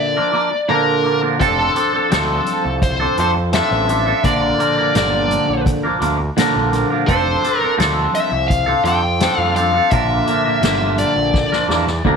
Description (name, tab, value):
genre	psychedelic rock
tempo	85 BPM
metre	4/4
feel	straight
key	unclear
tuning	A4 = 440 Hz
part	dark smooth lead guitar	melody	0.0-12.2 s	A4 to G5	-19 LUFS	left 2 dB	wah, overdrive, slapback echo
part	twangy electric guitar	riff	0.0-12.2 s	Bb2 to Bb4	-18 LUFS	right 2 dB	phaser
part	growling picked electric bass	bass	1.4-12.2 s	F1 to F2	-22 LUFS	right 1 dB	overdrive
part	soft-mallet drum kit	drums	1.4-12.2 s	hi-hat, kick drum, snare drum	-23 LUFS	left 2 dB	none
room	light reverb, small room ambience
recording	1960s-style stereo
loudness	-14 LUFS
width	side -6 dB against mid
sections	0.0-12.2 A section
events	drum fill 11.3-12.2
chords	0.0 Bb; 1.4 F6; 4.2 Bb; 7.1 F6; 9.9 Bb